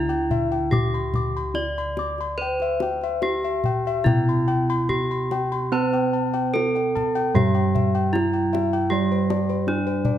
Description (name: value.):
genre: Javanese gamelan.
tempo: 72-81 BPM.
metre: 4/4.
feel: straight.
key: unclear.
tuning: A4 = 440 Hz.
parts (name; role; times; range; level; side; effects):
gamelan-type bronze metallophone; melody; 0.0-10.2 s; D4 to D5; -25 LUFS; right 1 dB; none.
gamelan-type bossed gongs; bass; 0.0-10.2 s; D2 to C5-45c; -28 LUFS; left 1 dB; none.
gamelan-type bossed gongs; arpeggios; 0.1-10.2 s; C5-45c to D6; -27 LUFS; left 5 dB; none.
kendang; percussion; 0.1-10.2 s; none; -26 LUFS; left 2 dB; none.
gamelan-type bronze metallophone; accompaniment; 5.7-10.2 s; G3-35c to C4-45c; -25 LUFS; right 7 dB; none.
room: moderate recital hall reverb, RT60 1.7 s.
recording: none.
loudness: -20 LUFS.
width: side -10 dB against mid.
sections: 0.0-10.2 A section.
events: none.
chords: none.